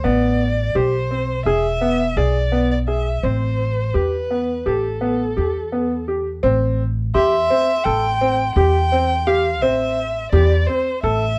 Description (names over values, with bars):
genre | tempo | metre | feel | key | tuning
contemporary instrumental, chamber music in an uneven meter | 169 BPM (eighths) | 9/8 | straight | A minor | A4 = 439 Hz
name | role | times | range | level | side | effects
dark violin | melody | 0.0-11.4 s | A4 to G5 | -24 LUFS | equal | none
clear baby grand piano | arpeggios | 0.0-11.2 s | B3 to A4 | -23 LUFS | equal | none
upright bass | bass | 0.0-11.4 s | E1 to E2 | -24 LUFS | equal | none
glockenspiel with rubber mallets | texture | 7.1-8.7 s | C6 | -32 LUFS | equal | none
room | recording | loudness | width
light reverb | dark, warm production | -19 LUFS | mono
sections
0.0-6.4 A section; 6.4-11.4 B section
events
none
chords
0.0 Am9; 1.5 E; 3.2 Am9; 4.7 Asus2; 6.4 Am7